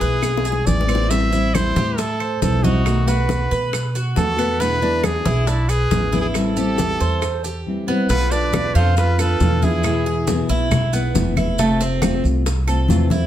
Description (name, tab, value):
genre	latin, Cuban son and guajira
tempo	137 BPM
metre	4/4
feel	straight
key	A minor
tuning	A4 = 440 Hz
part	clear trumpet	melody	0.0-10.5 s	E4 to E5	-23 LUFS	right 1 dB	none
part	nylon-string guitar	accompaniment	0.0-13.3 s	B2 to F#4	-23 LUFS	left 2 dB	none
part	Cuban tres	arpeggios	0.0-13.3 s	A3 to C5	-26 LUFS	right 4 dB	none
part	upright bass	bass	0.0-13.3 s	F1 to B2	-20 LUFS	equal	none
part	congas	percussion	0.0-13.3 s	none	-24 LUFS	left 1 dB	none
part	maracas	percussion	0.0-13.3 s	none	-33 LUFS	right 3 dB	none
part	bongos	percussion	0.2-13.3 s	none	-30 LUFS	left 4 dB	none
part	claves	percussion	0.2-12.9 s	none	-33 LUFS	right 8 dB	none
part	breathy bright jazz flute	second line	8.1-10.5 s	E4 to B4	-28 LUFS	equal	none
room	moderate studio reverb, RT60 0.9 s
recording	heard from further back in the room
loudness	-16 LUFS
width	side -11 dB against mid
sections	0.0-8.1 A section; 8.1-13.3 B section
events	drum fill 0.2-1.1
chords	0.0 E; 1.1 Am7; 2.9 B7; 4.6 E7; 6.4 Am7; 8.1 Bdim; 9.8 E; 11.6 Fmaj7